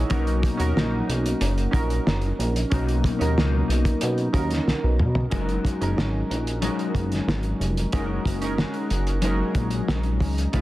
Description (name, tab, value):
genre	indie pop, bedroom pop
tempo	92 BPM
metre	4/4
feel	straight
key	F# major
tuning	A4 = 442 Hz
part	mellow electric guitar	accompaniment	0.0-10.6 s	B2 to A#4	-29 LUFS	left 4 dB	analog chorus, vibrato effect
part	warm analog keys	accompaniment	0.0-10.6 s	C#4 to A#5	-29 LUFS	right 3 dB	chorus, cassette tape
part	chorused synth bass	bass	0.0-10.6 s	E#1 to B2	-24 LUFS	equal	none
part	cloth-damped thuddy drum kit	drums	0.1-10.6 s	hi-hat, kick drum, snare drum, toms	-26 LUFS	equal	none
room	light reverb, small room ambience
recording	dense, heavily limited modern master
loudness	-21 LUFS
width	side -16 dB against mid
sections	0.0-5.3 A section; 5.3-10.6 B section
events	drum fill 4.7-5.3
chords	0.1 Bmaj7; 5.3 F#69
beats	| 0.11 0.76 1.41 2.06 | 2.71 3.37 4.02 4.67 | 5.32 5.97 6.63 7.28 | 7.93 8.58 9.24 9.89 | 10.54